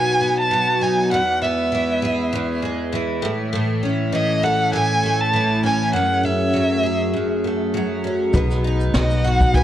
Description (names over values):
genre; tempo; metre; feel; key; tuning
acoustic pop; 100 BPM; 4/4; swing 55% on 16ths; B mixolydian; A4 = 440 Hz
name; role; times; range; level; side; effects
warm violin; melody; 0.0-9.6 s; D#5 to A5; -20 LUFS; right 1 dB; none
picked twelve-string acoustic guitar; accompaniment; 0.0-9.6 s; E2 to A4; -21 LUFS; equal; double-tracked left and right
glass harmonica; sustained chords; 0.0-9.6 s; G#3 to C#5; -28 LUFS; equal; none
dark upright piano; accompaniment; 8.3-9.6 s; D#4 to B4; -29 LUFS; left 3 dB; none
upright bass; bass; 8.3-9.6 s; B1; -19 LUFS; equal; tube saturation
jazz brush drum kit; drums; 8.3-9.6 s; kick drum, shaker, snare drum; -19 LUFS; equal; none
room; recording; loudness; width
light reverb, small room ambience; worn, warbling old tape, cassette tape, warbly pitch drift; -17 LUFS; side -11 dB against mid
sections
0.0-9.6 A section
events
none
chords
0.0 B; 1.1 E; 3.2 A; 5.9 F#madd9; 8.3 B